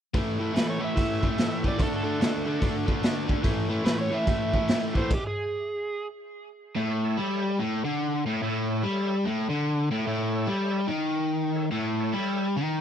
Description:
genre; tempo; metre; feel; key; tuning
blues rock power trio and southern rock; 145 BPM; 4/4; swing 63% on 8ths; A major from 6.8 s; A4 = 440 Hz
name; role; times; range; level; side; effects
crunchy overdriven guitar; riff; 0.1-12.8 s; A2 to D4; -26 LUFS; left 1 dB; none
raw garage drum kit; drums; 0.1-5.2 s; crash cymbal, hi-hat, kick drum, snare drum; -26 LUFS; equal; none
overdriven slide guitar; melody; 0.6-6.1 s; G4 to E5; -32 LUFS; right 3 dB; tape echo
overdriven tonewheel organ; sustained chords; 6.8-12.5 s; A4 to E5; -37 LUFS; right 4 dB; chorus vibrato, slow rotary speaker
room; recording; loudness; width
little or no reverb; none; -24 LUFS; side -9 dB against mid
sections
0.1-6.8 A section; 6.8-12.8 B section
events
stop 5.1-6.8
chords
0.1 A5; 1.8 D5; 3.5 A5; 5.1 N.C.; 6.8 A

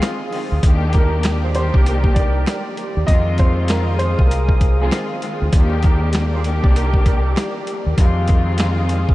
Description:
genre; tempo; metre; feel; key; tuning
hip hop, boom-bap hip-hop; 98 BPM; 4/4; swing 61% on 16ths; Eb major; A4 = 440 Hz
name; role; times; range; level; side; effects
muted studio string section; accompaniment; 0.0-9.1 s; Eb3 to G4; -24 LUFS; left 2 dB; cassette tape, high-pass filter, low-pass filter
dark analog pad; sustained chords; 0.0-9.1 s; G4 to Eb6; -28 LUFS; equal; chorus, high-pass filter, low-pass filter
boom bap sampler-style drum kit; drums; 0.0-9.1 s; hi-hat, kick drum, snare drum; -18 LUFS; equal; none
finger snap; percussion; 0.0-8.8 s; none; barely audible; none; none
deep dub fingered electric bass; bass; 0.5-9.1 s; C2 to F2; -18 LUFS; equal; none
mellow horn section; stabs; 0.9-7.5 s; Eb4 to D5; -33 LUFS; right 5 dB; high-pass filter, low-pass filter, diffuse ambient delay
dark upright piano; melody; 1.0-5.1 s; Ab4 to Eb5; -28 LUFS; right 1 dB; high-pass filter, low-pass filter, diffuse ambient delay
room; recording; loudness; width
light reverb, small room reverb; vinyl crackle, nothing above 11.0 kHz; -15 LUFS; side -17 dB against mid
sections
0.0-9.1 A section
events
none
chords
0.0 Fm7; 0.6 Ebmaj7; 3.1 Fm7; 5.5 Ebmaj7; 8.0 Fm7

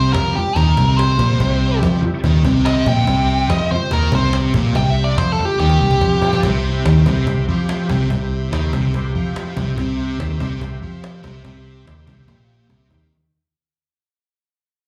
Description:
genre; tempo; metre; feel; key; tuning
blues rock power trio and southern rock; 143 BPM; 4/4; straight; C mixolydian; A4 = 441 Hz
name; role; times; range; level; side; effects
nasal lead guitar with a parked wah; melody; 0.0-6.4 s; G4 to G5; -22 LUFS; equal; overdrive, slapback echo
overdriven tonewheel organ; sustained chords; 0.0-13.1 s; G3 to E5; -32 LUFS; equal; chorus vibrato, slow rotary speaker
thick fuzz guitar; riff; 0.0-13.1 s; Bb2 to F3; -22 LUFS; equal; distortion, slapback echo
vintage muted fingered electric bass; bass; 0.0-13.1 s; Bb1 to F2; -21 LUFS; equal; none
cajon; drums; 0.1-13.0 s; none; -28 LUFS; equal; slapback echo
room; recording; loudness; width
light reverb; live gig heard through the venue's PA, club reverb; -17 LUFS; mono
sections
0.0-6.4 A section; 6.4-13.1 B section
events
drum fill 5.6-6.4; fade-out 6.4-13.1; break 12.7-13.1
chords
0.0 C

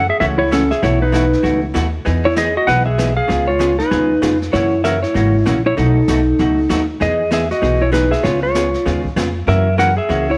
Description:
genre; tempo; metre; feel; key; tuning
country, western swing; 194 BPM; 4/4; swing 61% on 8ths; E major; A4 = 442 Hz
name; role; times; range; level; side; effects
clean lap steel guitar; melody; 0.0-10.4 s; C#4 to F#5; -18 LUFS; equal; none
upright bass; bass; 0.0-10.4 s; G#1 to F#2; -22 LUFS; equal; none
vintage hollow-body jazz guitar; accompaniment; 0.2-10.3 s; B2 to G#4; -24 LUFS; equal; none
jazz brush drum kit; drums; 0.2-10.4 s; brushed snare drum, hi-hat, kick drum, snare drum; -31 LUFS; equal; none
room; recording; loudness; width
moderate echo chamber reverb, RT60 1.8 s, studio ambience; none; -16 LUFS; mono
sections
0.0-10.4 A section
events
none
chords
0.0 F#m7; 0.8 B7sus4; 2.1 Emaj7; 3.3 C#7; 4.5 F#7; 5.8 B7; 7.0 Emaj7; 8.2 C#7; 9.5 F#7

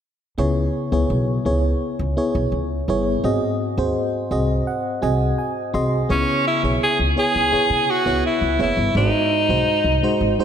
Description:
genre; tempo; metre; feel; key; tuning
pop; 84 BPM; 4/4; straight; C# minor; A4 = 439 Hz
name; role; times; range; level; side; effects
FM electric piano with auto-pan; accompaniment; 0.4-10.4 s; G#2 to B#5; -22 LUFS; equal; none
upright bass; bass; 0.4-10.4 s; F#1 to C#3; -22 LUFS; equal; none
breathy alto saxophone; melody; 6.1-10.4 s; C#4 to G#4; -18 LUFS; equal; tape echo
room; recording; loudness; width
wet lush hall reverb, RT60 2.4 s; dreamy mix soaked in reverb; -18 LUFS; side -8 dB against mid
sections
0.4-6.1 A section; 6.1-10.4 B section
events
FM electric piano fill 4.0-6.1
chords
0.4 C#m7; 3.2 G#7; 6.1 C#m7; 9.0 G#7

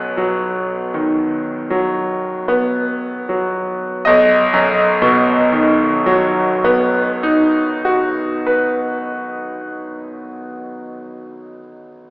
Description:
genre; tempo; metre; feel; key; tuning
classical; 36-41 BPM; 4/4; rubato; B major; A4 = 440 Hz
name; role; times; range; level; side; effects
bright concert grand piano; accompaniment; 0.0-12.1 s; B1 to D#5; -15 LUFS; equal; none
room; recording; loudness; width
wet recital hall reverb, RT60 1.5 s; recorded in a church or concert hall, AM radio sound; -14 LUFS; side -24 dB against mid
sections
0.0-4.1 A section; 4.1-10.1 B section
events
slowing down 0.0-4.1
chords
0.0 B

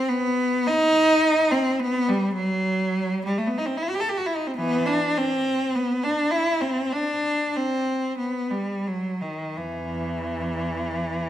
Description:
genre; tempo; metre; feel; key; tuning
classical, free, expressive piece for unaccompanied cello; 36-54 BPM; 4/4; rubato; E minor; A4 = 443 Hz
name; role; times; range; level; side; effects
rich cello; solo; 0.0-11.3 s; E2 to A4; -22 LUFS; equal; none
room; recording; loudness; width
wet recital hall reverb, RT60 1.2 s; none; -22 LUFS; side -11 dB against mid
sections
0.0-11.3 A section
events
none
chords
none

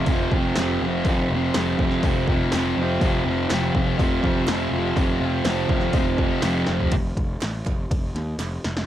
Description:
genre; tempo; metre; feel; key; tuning
garage rock duo or trio; 122 BPM; 4/4; straight; unclear; A4 = 441 Hz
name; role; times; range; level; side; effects
fuzz guitar; riff; 0.0-6.9 s; F2 to F3; -22 LUFS; equal; distortion, cassette tape
fuzz picked electric bass; bass; 0.1-8.8 s; F1 to Eb2; -28 LUFS; equal; overdrive
punchy analog drum machine; drums; 0.1-8.9 s; hi-hat, kick drum, ride cymbal, snare drum, toms; -24 LUFS; equal; cassette tape
group handclap; percussion; 0.6-8.5 s; none; -38 LUFS; right 10 dB; none
room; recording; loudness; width
digital ambience; home recording on cassette; -20 LUFS; side -12 dB against mid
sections
0.0-6.9 A section; 6.9-8.9 B section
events
drum fill 6.7, 8.4-8.9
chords
0.0 F5; 6.9 N.C.

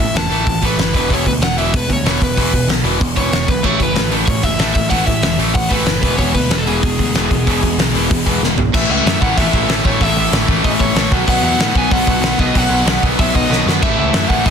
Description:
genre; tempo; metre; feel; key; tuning
punk rock; 188 BPM; 4/4; straight; A lydian from 8.7 s; A4 = 440 Hz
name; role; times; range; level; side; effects
overdriven electric guitar; melody; 0.0-14.5 s; G#4 to A5; -21 LUFS; equal; none
distorted electric guitar; riff; 0.0-14.5 s; E2 to B3; -22 LUFS; left 13 dB; overdrive
distorted electric guitar; riff; 0.0-14.5 s; E2 to B3; -21 LUFS; right 14 dB; distortion
growling picked electric bass; bass; 0.0-14.5 s; E1 to A2; -21 LUFS; equal; overdrive
loose indie drum kit; drums; 0.0-14.5 s; crash cymbal, hi-hat, kick drum, snare drum, toms; -17 LUFS; equal; none
thick fuzz guitar; riff; 3.6-14.5 s; A2 to F#4; -21 LUFS; left 3 dB; distortion
room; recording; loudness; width
light reverb; dense, heavily limited modern master; -12 LUFS; side -7 dB against mid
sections
0.0-8.7 A section; 8.7-14.5 B section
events
drum fill 8.4-8.7, 13.5-13.8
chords
0.0 A5; 0.9 E5; 3.6 A; 6.0 E; 8.7 A; 11.1 B; 13.8 A

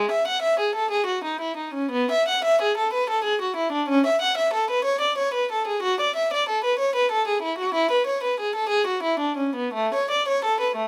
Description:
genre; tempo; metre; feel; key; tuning
classical, baroque-style suite movement for unaccompanied violin; 62 BPM (dotted quarters); 12/8; rubato; A major; A4 = 440 Hz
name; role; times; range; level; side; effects
warm violin; solo; 0.0-10.9 s; G#3 to F#5; -23 LUFS; equal; none
room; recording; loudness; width
little or no reverb; close, detailed microphones; -23 LUFS; mono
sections
0.0-10.9 A section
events
none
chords
none

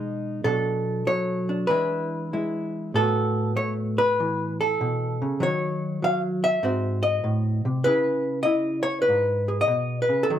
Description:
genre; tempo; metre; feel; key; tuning
solo jazz; 98 BPM; 4/4; swing 66% on 8ths, rubato; C# minor; A4 = 435 Hz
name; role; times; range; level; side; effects
hollow-body jazz guitar; solo; 0.0-10.4 s; G#2 to E#5; -22 LUFS; equal; none
room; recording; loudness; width
wet club reverb, RT60 0.7 s; minimal, uncompressed stereo recording; -22 LUFS; side -10 dB against mid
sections
0.0-10.4 A section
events
none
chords
0.4 Bm7; 1.7 E7; 2.9 A69; 5.4 D#m7; 6.6 G#7; 7.8 C#m7

